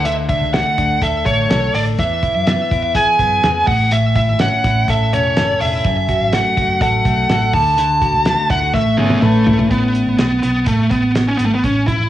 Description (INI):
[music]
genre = jangly indie pop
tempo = 124 BPM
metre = 4/4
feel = straight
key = A major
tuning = A4 = 444 Hz
[part]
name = high-gain lead guitar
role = melody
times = 0.0-12.1 s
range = A3 to A5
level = -16 LUFS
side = right 1 dB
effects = distortion, analog delay
[part]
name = direct-recorded clean electric guitar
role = arpeggios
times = 0.0-10.3 s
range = F#2 to B4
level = -21 LUFS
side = left 6 dB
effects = cassette tape
[part]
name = vintage muted fingered electric bass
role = bass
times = 0.0-12.1 s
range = E1 to E3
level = -20 LUFS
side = right 1 dB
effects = none
[part]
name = cloth-damped thuddy drum kit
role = drums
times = 0.1-12.0 s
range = hi-hat, kick drum, snare drum, toms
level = -20 LUFS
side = right 1 dB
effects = cassette tape
[sound]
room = light reverb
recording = home recording on cassette, studio reverb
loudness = -13 LUFS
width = side -12 dB against mid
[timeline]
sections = 0.0-9.7 A section; 9.7-12.1 B section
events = drum fill 8.7-9.7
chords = 0.0 D; 2.0 E; 3.7 A; 5.8 F#m; 7.5 D; 8.7 Aadd9